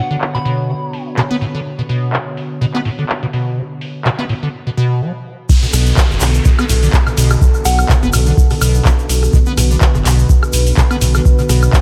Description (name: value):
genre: acid house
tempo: 125 BPM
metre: 4/4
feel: swing 55% on 16ths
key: B minor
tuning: A4 = 440 Hz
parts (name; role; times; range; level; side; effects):
- soft synth bell; melody; 0.0-1.0, 7.7-8.0 s; F#5 to B5; -26 LUFS; equal; chorus, phaser, vintage 12-bit sampler grit, tape echo
- warm analog pad; sustained chords; 0.0-11.8 s; D3 to C#5; -25 LUFS; equal; chorus, sidechain pumping
- acid bass, square; riff; 0.1-11.8 s; A2 to B3; -21 LUFS; equal; tube saturation, lush chorus, dub echo
- booming analog drum machine; drums; 0.2-11.8 s; crash cymbal, handclaps, hi-hat, rim click, woodblock; -23 LUFS; equal; low-pass filter on hats, low-pass filter on snare, low-pass filter on cymbals, low-pass filter on perc
- electronic kick drum; drums; 5.5-11.8 s; none; -14 LUFS; equal; none
- tube shaker; percussion; 5.5-11.8 s; none; -29 LUFS; equal; none
- downlifter; sound effects; 5.5-9.3 s; none; -30 LUFS; equal; none
- round analog bass; bass; 5.7-11.7 s; F#1 to B1; -16 LUFS; equal; sidechain pumping
room: light reverb, digital ambience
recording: echo-heavy mix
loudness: -14 LUFS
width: mono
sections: 0.0-5.5 A section; 5.5-11.8 B section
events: drop 5.5-11.8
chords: 0.0 Bm; 5.5 Bm7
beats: 0.21 0.69 1.17 | 1.65 2.13 2.61 3.09 | 3.57 4.05 4.53 5.01 | 5.49 5.97 6.45 6.93 | 7.41 7.89 8.37 8.85 | 9.33 9.81 10.29 10.77 | 11.25 11.73